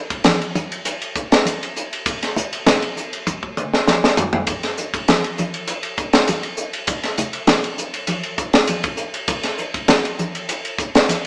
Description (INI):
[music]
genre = jazz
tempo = 100 BPM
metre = 4/4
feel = straight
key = none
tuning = none
[part]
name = crisp fusion drum kit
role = drums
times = 0.1-11.3 s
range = hi-hat, kick drum, ride cymbal, snare drum, toms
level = -20 LUFS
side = equal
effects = none
[part]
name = congas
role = percussion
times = 0.3-11.2 s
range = none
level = -27 LUFS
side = equal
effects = none
[sound]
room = moderate stone room reverb, RT60 1.2 s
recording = band playing live in one room, small speaker sound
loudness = -20 LUFS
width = mono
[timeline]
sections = 0.0-11.3 A section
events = drum fill 3.3-4.5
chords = none